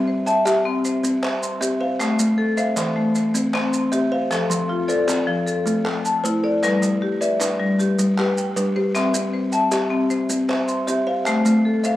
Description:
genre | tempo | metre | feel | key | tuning
southern african traditional, mbira-style interlocking cycle | 104 BPM (dotted quarters) | 12/8 | straight | unclear | A4 = 439 Hz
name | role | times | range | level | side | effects
buzzing kalimba | arpeggios | 0.0-12.0 s | E3 to G5 | -23 LUFS | right 1 dB | cassette tape
marimba with hard mallets | arpeggios | 0.0-12.0 s | F3 to C6 | -20 LUFS | left 2 dB | cassette tape
group handclap | percussion | 0.3-11.9 s | none | -32 LUFS | right 1 dB | none
maracas | percussion | 0.3-12.0 s | none | -29 LUFS | right 3 dB | none
room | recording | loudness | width
moderate spring reverb, RT60 2.8 s | home recording on cassette | -18 LUFS | side -14 dB against mid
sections
0.0-12.0 A section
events
none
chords
0.0 C; 2.0 Am; 3.2 C; 4.3 F; 5.5 Am; 6.6 G; 8.9 C; 11.3 Am

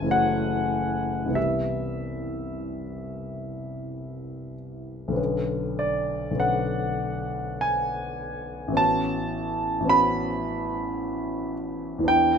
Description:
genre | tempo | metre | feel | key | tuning
classical, impressionist solo piano | 45-56 BPM | 3/4 | rubato | unclear | A4 = 438 Hz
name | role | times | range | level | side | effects
warm grand piano | solo | 0.0-12.4 s | F#1 to B5 | -24 LUFS | equal | none
room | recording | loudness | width
moderate recital hall reverb, RT60 1.3 s | close, detailed microphones | -24 LUFS | side -6 dB against mid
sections
0.0-12.4 A section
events
none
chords
0.0 F#m7; 1.4 Cmaj7; 5.2 Bmadd9; 8.8 A69

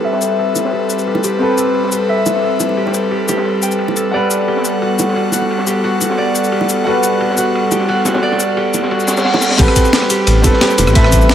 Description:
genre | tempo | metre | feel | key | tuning
liquid drum and bass | 176 BPM | 4/4 | swing 53% on 16ths | A dorian | A4 = 441 Hz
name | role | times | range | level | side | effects
warm grand piano | accompaniment | 0.0-11.3 s | G3 to F#5 | -20 LUFS | equal | low-pass filter, ping-pong delay
airy breathy pad | sustained chords | 0.0-11.3 s | G3 to F#5 | -17 LUFS | equal | chorus
concert harp | arpeggios | 0.0-11.3 s | F#4 to G5 | -19 LUFS | equal | low-pass filter, ping-pong delay
crunchy breakbeat drum kit | drums | 0.0-11.3 s | ride cymbal, snare drum | -24 LUFS | equal | high-pass filter on cymbals, low-pass filter on cymbals, high-pass filter on snare, low-pass filter on snare, high-pass filter on room, low-pass filter on room
breakbeat sampler-style drum kit | drums | 0.2-11.3 s | crash cymbal, hi-hat, rim click, shaker, snare drum | -17 LUFS | left 2 dB | none
bongos | percussion | 0.6-10.9 s | none | -23 LUFS | right 3 dB | none
reverse cymbal | sound effects | 9.0-9.6 s | none | -19 LUFS | left 3 dB | none
dark detuned saw bass | bass | 9.6-11.3 s | E1 to A1 | -13 LUFS | equal | none
electronic kick drum | drums | 9.6-11.2 s | none | -13 LUFS | equal | none
room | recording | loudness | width
light reverb, small room ambience | none | -12 LUFS | side -10 dB against mid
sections
0.0-9.6 A section; 9.6-11.3 B section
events
filter sweep on harp 0.0-9.6; reverse cymbal 9.0-9.6; drop 9.6-11.3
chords
0.0 Am9; 4.1 Gmaj9; 9.6 Am9

